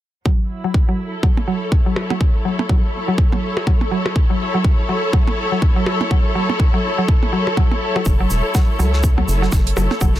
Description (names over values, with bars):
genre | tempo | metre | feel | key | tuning
minimal techno | 123 BPM | 4/4 | swing 58% on 16ths | F# minor | A4 = 440 Hz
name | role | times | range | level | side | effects
mallet-like synth pluck | riff | 0.3-10.1 s | F#3 | -23 LUFS | equal | chorus, sidechain pumping, ping-pong delay
electronic kick drum | drums | 0.3-10.1 s | none | -16 LUFS | equal | none
flickering grainy texture | texture | 1.0-10.2 s | A4 | -30 LUFS | right 2 dB | built-in reverb, sidechain pumping
muted studio string section | texture | 0.3-10.2 s | F#3 to C#5 | -23 LUFS | left 2 dB | sidechain pumping
percussion blips | percussion | 1.4-10.0 s | none | -24 LUFS | right 3 dB | dub echo
rubbery square bass | bass | 8.1-10.2 s | E1 to C#2 | -18 LUFS | equal | sidechain pumping
damped 70s drum kit | drums | 8.1-10.2 s | hi-hat, shaker, snare drum | -30 LUFS | right 3 dB | high-pass filter on hats, high-pass filter on snare, high-pass filter on perc, high-pass filter on room
room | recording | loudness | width
light reverb | dense, heavily limited modern master | -15 LUFS | side -13 dB against mid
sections
0.3-10.2 A section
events
filter sweep on synth arpeggio sound 0.3-10.2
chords
0.3 F#m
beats
| 0.26 0.74 1.23 1.72 | 2.21 2.69 3.18 3.67 | 4.16 4.65 5.13 5.62 | 6.11 6.60 7.08 7.57 | 8.06 8.55 9.04 9.52 | 10.01